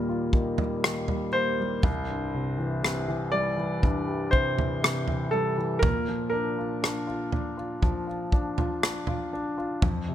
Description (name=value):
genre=pop ballad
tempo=60 BPM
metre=4/4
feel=straight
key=unclear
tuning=A4 = 440 Hz
part: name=bright concert grand piano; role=melody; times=0.0-9.3 s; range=A4 to D5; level=-30 LUFS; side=equal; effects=none
part: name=warm concert grand piano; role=accompaniment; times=0.0-10.1 s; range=C2 to G4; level=-29 LUFS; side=left 1 dB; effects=none
part: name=natural country drum kit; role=drums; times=0.3-10.1 s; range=kick drum, rim click, toms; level=-26 LUFS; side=equal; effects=none
room=small room ambience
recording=none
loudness=-25 LUFS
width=side -11 dB against mid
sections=0.0-10.1 A section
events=none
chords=0.0 Ebadd9; 1.8 C; 5.8 Bb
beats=0.83 | 1.83 2.83 3.83 4.83 | 5.83 6.83 7.83 8.83 | 9.83